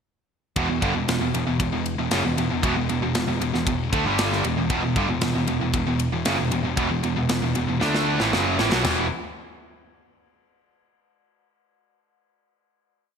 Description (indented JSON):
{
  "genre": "heavy metal",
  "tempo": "116 BPM",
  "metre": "4/4",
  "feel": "straight",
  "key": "E minor",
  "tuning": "A4 = 440 Hz",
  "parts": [
    { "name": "distorted electric guitar", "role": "riff", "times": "0.6-9.1 s", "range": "E2 to D4", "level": "-27 LUFS", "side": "right 10 dB", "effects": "overdrive" },
    { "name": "distorted electric guitar", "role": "riff", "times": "0.6-9.1 s", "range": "E2 to E4", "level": "-29 LUFS", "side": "left 1 dB", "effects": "distortion" },
    { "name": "scooped high-gain guitar", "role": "riff", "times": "0.6-9.1 s", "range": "E2 to D4", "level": "-27 LUFS", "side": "left 9 dB", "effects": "distortion" },
    { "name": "overdriven picked electric bass", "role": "bass", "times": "0.6-9.1 s", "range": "E1 to D2", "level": "-28 LUFS", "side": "equal", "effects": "none" },
    { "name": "tight metal drum kit", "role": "drums", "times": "0.6-9.0 s", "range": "crash cymbal, kick drum, ride cymbal, snare drum, toms", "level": "-27 LUFS", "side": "equal", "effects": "gated reverb" }
  ],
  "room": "light reverb",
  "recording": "bright 1980s-style digital production",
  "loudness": "-21 LUFS",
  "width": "side -6 dB against mid",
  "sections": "0.6-8.8 riff; 8.8-10.9 final chord",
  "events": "drum fill 7.8-8.8",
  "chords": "0.6 Em; 8.8 E5",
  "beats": "| 0.56 1.08 1.60 2.12 | 2.63 3.15 3.67 4.19 | 4.70 5.22 5.74 6.25 | 6.77 7.29 7.81 8.33 | 8.85"
}